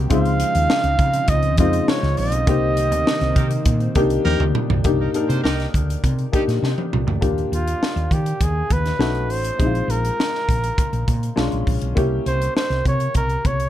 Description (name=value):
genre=polished 1980s jazz-funk pop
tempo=101 BPM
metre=4/4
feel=straight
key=unclear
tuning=A4 = 438 Hz
part: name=warm baby grand piano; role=accompaniment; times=0.0-13.7 s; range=Ab3 to Bb4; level=-24 LUFS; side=left 3 dB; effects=wide subtle chorus
part: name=lush unison pad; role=sustained chords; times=0.0-4.8 s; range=C3 to Eb4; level=-28 LUFS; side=right 1 dB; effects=chorus
part: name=woody fretless electric bass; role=bass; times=0.0-13.7 s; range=A1 to Eb3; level=-22 LUFS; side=equal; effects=none
part: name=warm flugelhorn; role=melody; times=0.1-13.7 s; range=F4 to F5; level=-23 LUFS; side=right 2 dB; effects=slapback echo
part: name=crisp fusion drum kit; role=drums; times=0.1-13.7 s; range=hi-hat, kick drum, snare drum, toms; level=-22 LUFS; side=equal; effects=none
part: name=clear horn section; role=second line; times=3.4-6.4 s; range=G3 to C5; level=-27 LUFS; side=right 2 dB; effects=none
room=light reverb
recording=dark, warm production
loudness=-17 LUFS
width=side -12 dB against mid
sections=0.0-4.8 A section; 4.8-7.2 B section; 7.2-13.7 C section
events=band accent 2.5-4.8; drum fill 4.3-4.8, 6.6-7.2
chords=0.1 Dbmaj9; 2.5 Cm9; 7.2 Ebmaj7; 9.0 B9; 9.6 Bb9sus4; 11.4 Bdim7; 12.0 C7b9